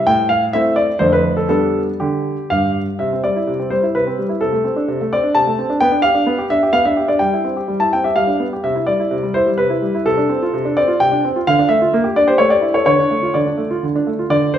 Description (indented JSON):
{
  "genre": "classical-period piano sonatina",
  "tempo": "127 BPM",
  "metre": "3/4",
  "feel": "rubato",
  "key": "C major, D minor from 11.5 s",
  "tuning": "A4 = 440 Hz",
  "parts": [
    { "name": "clear concert grand piano", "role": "solo", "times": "0.0-14.6 s", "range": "F2 to A5", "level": "-14 LUFS", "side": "equal", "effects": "none" }
  ],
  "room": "wet recital hall reverb, RT60 1.4 s",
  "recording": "minimal, uncompressed stereo recording",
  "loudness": "-14 LUFS",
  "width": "side -10 dB against mid",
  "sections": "0.0-3.0 A section; 3.0-14.3 B section",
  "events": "none",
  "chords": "0.1 Am; 1.0 Dm/F; 1.5 G; 3.0 C; 4.4 D5/C; 5.8 G7/B; 7.2 C/G; 8.2 G; 8.6 C; 10.1 Dm7/C; 11.5 Dm; 11.9 Gm/Bb; 12.4 A5; 12.9 Dm"
}